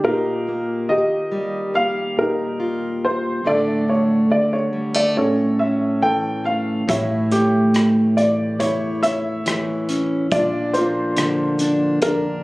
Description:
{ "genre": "acoustic folk-pop ballad", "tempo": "70 BPM", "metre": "4/4", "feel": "straight", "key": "unclear", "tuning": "A4 = 441 Hz", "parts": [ { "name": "dark grand piano", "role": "melody", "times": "0.0-12.4 s", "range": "C#4 to G5", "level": "-21 LUFS", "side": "equal", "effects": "none" }, { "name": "fingerpicked plugged-in steel-string acoustic guitar", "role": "accompaniment", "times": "0.0-12.4 s", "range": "E2 to F4", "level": "-20 LUFS", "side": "equal", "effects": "none" }, { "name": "felt-muted upright piano", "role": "arpeggios", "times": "0.0-0.4, 6.0-8.9 s", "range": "G4 to A4", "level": "-27 LUFS", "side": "right 1 dB", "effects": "none" }, { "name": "upright bass", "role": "bass", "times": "6.9-12.4 s", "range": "A1 to Bb1", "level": "-29 LUFS", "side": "equal", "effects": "none" }, { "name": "loose indie drum kit", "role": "drums", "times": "6.9-12.2 s", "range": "hi-hat, kick drum, rim click", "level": "-27 LUFS", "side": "equal", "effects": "none" } ], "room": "light reverb", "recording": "recorded on a phone in the room, club reverb, compression", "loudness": "-17 LUFS", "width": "side -20 dB against mid", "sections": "0.0-6.9 A section; 6.9-12.4 B section", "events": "none", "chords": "0.0 Ebadd9/Bb; 3.5 Asus4; 5.2 A; 10.3 Bb" }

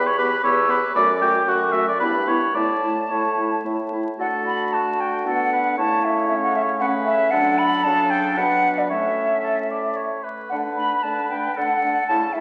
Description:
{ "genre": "quick classical-period movement for wind quintet", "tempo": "114 BPM", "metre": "3/4", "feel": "straight", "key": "D major", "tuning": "A4 = 440 Hz", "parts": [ { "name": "hollow concert flute", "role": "melody", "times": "0.0-12.4 s", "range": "D5 to E6", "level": "-24 LUFS", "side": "equal", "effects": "none" }, { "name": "warm oboe", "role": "second line", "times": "0.0-12.4 s", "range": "F#4 to G5", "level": "-26 LUFS", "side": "equal", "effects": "none" }, { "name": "clear clarinet", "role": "accompaniment", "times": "0.0-12.4 s", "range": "C#4 to G4", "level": "-30 LUFS", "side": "equal", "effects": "none" }, { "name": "warm French horn", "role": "accompaniment", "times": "0.0-12.4 s", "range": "F#3 to B3", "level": "-36 LUFS", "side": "equal", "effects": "none" }, { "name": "mellow bassoon", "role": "bass", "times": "0.0-12.4 s", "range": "E2 to D3", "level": "-30 LUFS", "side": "equal", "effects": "none" } ], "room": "wet recital hall reverb, RT60 1.7 s", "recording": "very old 78 rpm record, vinyl crackle", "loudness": "-21 LUFS", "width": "mono", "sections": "0.0-4.2 A section; 4.2-12.4 B section", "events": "none", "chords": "0.0 Em; 0.9 D/F#; 2.0 Em/G; 2.6 A; 4.2 D; 5.8 A/C#; 7.3 D; 8.4 Bm; 8.9 A; 10.5 D" }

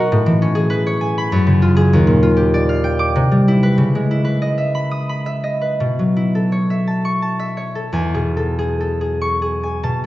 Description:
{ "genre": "classical, solo harp piece", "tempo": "82-103 BPM", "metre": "3/4", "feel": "rubato", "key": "E major", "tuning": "A4 = 441 Hz", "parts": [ { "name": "concert harp", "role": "solo", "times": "0.0-10.1 s", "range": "D#2 to D#6", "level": "-15 LUFS", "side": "equal", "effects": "none" } ], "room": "wet recital hall reverb, RT60 1.6 s", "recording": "heard from further back in the room, nothing above 7.7 kHz", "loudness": "-15 LUFS", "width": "side -16 dB against mid", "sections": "0.0-7.9 A section; 7.9-10.1 B section", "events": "none", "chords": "0.1 Amaj9; 1.3 F#sus2; 1.9 D#maj9; 3.2 Cmaj9; 3.8 C#m9; 5.8 B9sus4; 7.9 E69" }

